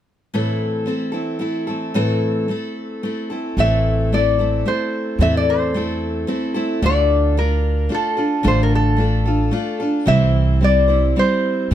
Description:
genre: acoustic folk duo or small band.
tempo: 111 BPM.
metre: 3/4.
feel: straight.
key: A minor.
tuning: A4 = 438 Hz.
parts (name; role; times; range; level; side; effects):
picked steel-string acoustic guitar; accompaniment; 0.3-11.7 s; A2 to C5; -20 LUFS; equal; none.
lap resonator guitar; melody; 3.6-11.7 s; A4 to E5; -20 LUFS; left 2 dB; plate reverb.
upright bass; bass; 3.6-11.7 s; A1 to E2; -18 LUFS; right 1 dB; none.
room: light reverb.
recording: none.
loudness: -16 LUFS.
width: side -11 dB against mid.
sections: 0.3-3.6 A section; 3.6-11.7 B section.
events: none.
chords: 0.3 Am; 6.8 Dm; 10.1 C.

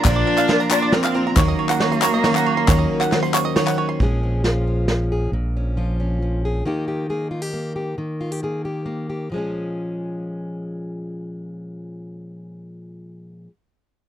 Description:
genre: indie folk with a building arrangement.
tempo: 136 BPM.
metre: 3/4.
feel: straight.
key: Bb minor.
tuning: A4 = 440 Hz.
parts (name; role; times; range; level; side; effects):
warm cello; melody; 0.0-3.5 s; Bb3 to D4; -21 LUFS; right 1 dB; none.
felt-muted upright piano; accompaniment; 0.0-4.0 s; Bb1 to F5; -26 LUFS; right 8 dB; none.
picked twelve-string acoustic guitar; accompaniment; 0.0-4.0 s; Bb2 to Gb4; -24 LUFS; left 6 dB; none.
bluegrass banjo; arpeggios; 0.0-4.0 s; Bb4 to C6; -24 LUFS; right 8 dB; none.
vintage brush drum kit; drums; 0.0-5.0 s; hi-hat, kick drum, snare drum; -19 LUFS; right 1 dB; none.
egg shaker; percussion; 0.0-3.8 s; none; -35 LUFS; right 13 dB; none.
group handclap; percussion; 0.0-3.8 s; none; -24 LUFS; left 9 dB; none.
fingered electric bass; bass; 0.1-6.6 s; Bb1 to Eb2; -21 LUFS; equal; none.
fingerpicked plugged-in steel-string acoustic guitar; accompaniment; 4.0-13.5 s; Bb2 to Ab4; -26 LUFS; left 1 dB; none.
room: little or no reverb.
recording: dry, close 1970s-style studio recording.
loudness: -18 LUFS.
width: side -11 dB against mid.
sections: 0.0-4.0 A section; 4.0-9.3 B section; 9.3-12.0 C section.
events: none.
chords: 0.0 Bb; 1.4 Ebm7; 4.0 Bbm7; 6.6 Eb; 9.3 Bbm7.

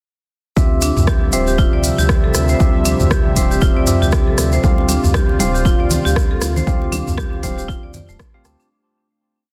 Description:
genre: afro house.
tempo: 118 BPM.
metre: 4/4.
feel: swing 58% on 16ths.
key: D minor.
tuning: A4 = 440 Hz.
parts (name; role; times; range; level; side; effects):
warm analog pad; sustained chords; 0.6-8.7 s; C3 to E5; -26 LUFS; equal; chorus, sidechain pumping.
tine electric piano; stabs; 0.6-8.7 s; C4 to A5; -25 LUFS; equal; sidechain pumping, digital delay.
round analog bass; bass; 0.6-8.6 s; D1 to D2; -22 LUFS; equal; sidechain pumping.
electronic kick drum; drums; 0.6-8.3 s; none; -19 LUFS; equal; none.
tube shaker; percussion; 0.6-8.7 s; none; -30 LUFS; equal; none.
marimba with hard mallets; arpeggios; 0.8-8.7 s; A3 to D5; -26 LUFS; equal; sidechain pumping, digital delay.
deep house drum kit; drums; 0.8-8.6 s; hi-hat, rim click, toms; -24 LUFS; equal; soft clipping on snare.
congas; percussion; 4.6-8.6 s; none; -28 LUFS; equal; none.
room: digital ambience.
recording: dense, heavily limited modern master.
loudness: -16 LUFS.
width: mono.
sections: 0.6-8.7 drop.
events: drop 0.6-8.7; fade-out 6.0-8.7.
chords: 0.6 Dm11; 4.6 Csus4/D.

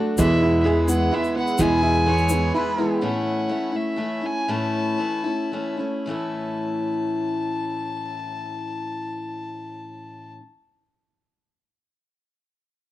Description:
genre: acoustic folk duo or small band.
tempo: 103-128 BPM.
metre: 3/4.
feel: straight.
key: A major.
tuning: A4 = 440 Hz.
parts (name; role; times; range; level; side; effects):
picked steel-string acoustic guitar; accompaniment; 0.0-10.4 s; E2 to F#4; -25 LUFS; left 2 dB; none.
felt-muted upright piano; arpeggios; 0.0-3.1 s; E3 to G#4; -23 LUFS; right 3 dB; plate reverb.
warm fiddle; melody; 0.2-10.3 s; E5 to A5; -28 LUFS; left 1 dB; plate reverb.
upright bass; bass; 0.2-2.5 s; E2; -23 LUFS; equal; none.
egg shaker; percussion; 0.2-2.4 s; none; -33 LUFS; left 4 dB; none.
mellow harmonica; second line; 2.1-3.0 s; B4 to C#5; -27 LUFS; right 2 dB; plate reverb.
room: moderate studio reverb, RT60 0.5 s.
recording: home recording on cassette.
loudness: -21 LUFS.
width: side -14 dB against mid.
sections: 0.0-3.0 A section; 3.0-6.1 B section; 6.1-9.6 C section.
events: slowing down 3.0-6.1.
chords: 0.2 E; 3.0 A.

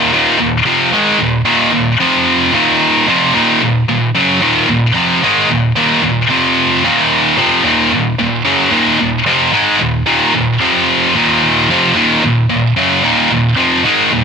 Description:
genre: metal.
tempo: 111 BPM.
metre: 4/4.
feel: straight.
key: Eb minor.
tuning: A4 = 440 Hz.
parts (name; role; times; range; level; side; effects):
scooped high-gain guitar; solo; 0.0-14.2 s; Eb2 to Ab3; -10 LUFS; equal; distortion.
room: light reverb.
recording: none.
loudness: -10 LUFS.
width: side -6 dB against mid.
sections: 0.1-14.2 A section.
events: none.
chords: 0.1 Eb5; 2.0 F5; 2.5 Ebm; 6.3 F5; 6.8 Ebm; 10.6 F5; 11.2 Ebm.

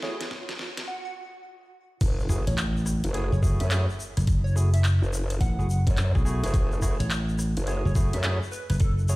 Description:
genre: glitch hop.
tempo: 106 BPM.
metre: 4/4.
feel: swing 64% on 16ths.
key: F# minor.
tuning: A4 = 440 Hz.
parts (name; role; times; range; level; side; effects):
plucky unison lead; melody; 0.0-9.2 s; A4 to F#5; -39 LUFS; right 1 dB; digital delay.
barky tine electric piano; stabs; 0.0-9.2 s; A3 to G#4; -36 LUFS; right 1 dB; overdrive, vintage 12-bit sampler grit, sidechain pumping, digital delay.
pop drum kit; drums; 0.0-8.9 s; crash cymbal, handclaps, hi-hat, rim click, snare drum; -34 LUFS; equal; overdrive.
riser and impact; sound effects; 0.0-4.3 s; none; -37 LUFS; equal; none.
electronic kick drum; drums; 0.3-8.9 s; none; -24 LUFS; equal; overdrive.
formant-sweep wobble bass; bass; 2.0-8.4 s; F#1 to F#2; -26 LUFS; equal; chorus, overdrive.
egg shaker; percussion; 2.0-9.2 s; none; -41 LUFS; left 2 dB; none.
slap bass; bass; 2.5-9.2 s; F#1 to B1; -23 LUFS; equal; none.
room: little or no reverb.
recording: played on a big sound system in a bare room, stone room reverb, high-pass filter.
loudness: -23 LUFS.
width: side -20 dB against mid.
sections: 0.0-2.0 A section; 2.0-9.2 B section.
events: build-up 0.0-2.0; drum fill 0.0-0.9; riser 0.0-0.9; filter sweep 0.0-2.0; break 0.9-2.0; drop 2.0-9.2; impact 2.0-4.3.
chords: 0.0 F#m9.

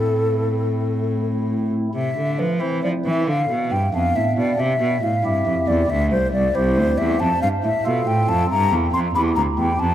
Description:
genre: classical, baroque-style sonata movement with continuo.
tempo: 91 BPM (dotted quarters).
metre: 12/8.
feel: straight.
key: C major.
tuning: A4 = 439 Hz.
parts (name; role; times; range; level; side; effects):
mellow hollow concert flute; melody; 0.0-9.9 s; A4 to C6; -21 LUFS; left 2 dB; none.
pipe organ, stopped flute; accompaniment; 0.0-9.9 s; C2 to A4; -24 LUFS; right 1 dB; none.
clear cello; bass; 0.0-9.9 s; C2 to F3; -22 LUFS; right 1 dB; none.
room: wet cathedral reverb, RT60 5.7 s.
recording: in a vast, echoing space.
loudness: -18 LUFS.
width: side -11 dB against mid.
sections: 0.0-1.9 A section; 1.9-9.9 A section.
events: none.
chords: 0.0 Am; 1.9 C; 3.3 Bdim; 4.6 C; 7.2 F; 8.5 Edim.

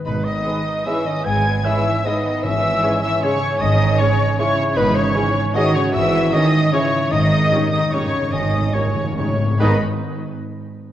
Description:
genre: classical, orchestral ballroom waltz.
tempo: 136-165 BPM.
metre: 3/4.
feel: rubato.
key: G# minor.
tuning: A4 = 441 Hz.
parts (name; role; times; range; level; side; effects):
concert harp; arpeggios; 0.0-9.8 s; G#2 to G#5; -26 LUFS; left 2 dB; none.
muted studio violin section; melody; 0.1-9.8 s; B5 to G#6; -27 LUFS; left 2 dB; none.
concert flute; second line; 0.1-9.8 s; B4 to G#5; -25 LUFS; left 1 dB; none.
muted symphonic violin section; second line; 0.1-9.8 s; B4 to G#5; -27 LUFS; left 3 dB; none.
warm oboe; second line; 0.1-9.8 s; B4 to G#5; -26 LUFS; equal; none.
mellow bassoon; accompaniment; 0.1-9.8 s; D#3 to F#4; -26 LUFS; right 1 dB; none.
muted symphonic cello section; bass; 0.1-9.8 s; B2 to B3; -23 LUFS; right 1 dB; none.
muted symphonic double bass section; bass; 0.1-9.8 s; G#1; -24 LUFS; right 3 dB; none.
muted symphonic viola section; accompaniment; 0.5-9.8 s; B3 to G#4; -32 LUFS; equal; none.
clear trombone section; sustained chords; 0.5-9.8 s; G#2 to G#3; -31 LUFS; right 1 dB; none.
mellow French horn section; sustained chords; 0.5-9.8 s; G3 to G#4; -36 LUFS; left 4 dB; none.
dark trumpet section; stabs; 0.5-9.8 s; B4 to D#5; -33 LUFS; equal; none.
timpani; percussion; 2.4-3.0, 7.1-9.8 s; G#2; -25 LUFS; equal; none.
room: wet concert hall reverb, RT60 2.0 s.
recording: worn, warbling old tape, cassette tape, warbly pitch drift.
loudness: -16 LUFS.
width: side -12 dB against mid.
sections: 0.1-9.6 A section; 9.6-10.8 B section.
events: slowing down 6.5-9.6; timpani fill 7.1-9.6.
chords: 0.1 G#m; 2.4 C#m/G#; 7.1 D#7/G#; 9.6 G#m.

